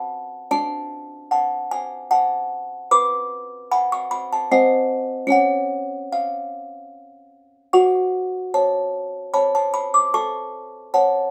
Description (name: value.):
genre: classical, lullaby for music box.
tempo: 75 BPM.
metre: 3/4.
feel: straight.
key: F# minor.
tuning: A4 = 438 Hz.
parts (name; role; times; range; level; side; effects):
music box; solo; 0.0-11.3 s; B#3 to D6; -21 LUFS; equal; none.
room: wet studio reverb, RT60 0.6 s.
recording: band playing live in one room.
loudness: -21 LUFS.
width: mono.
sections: 0.0-11.3 A section.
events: none.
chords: 0.0 F#m; 0.5 D; 2.9 G#m7b5/B; 4.5 G#7/B#; 5.3 C#; 7.7 F#m; 10.1 F#m/A.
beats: | 0.52 1.31 2.11 | 2.91 3.71 4.51 | 5.32 6.12 6.93 | 7.73 8.53 9.33 | 10.13 10.93.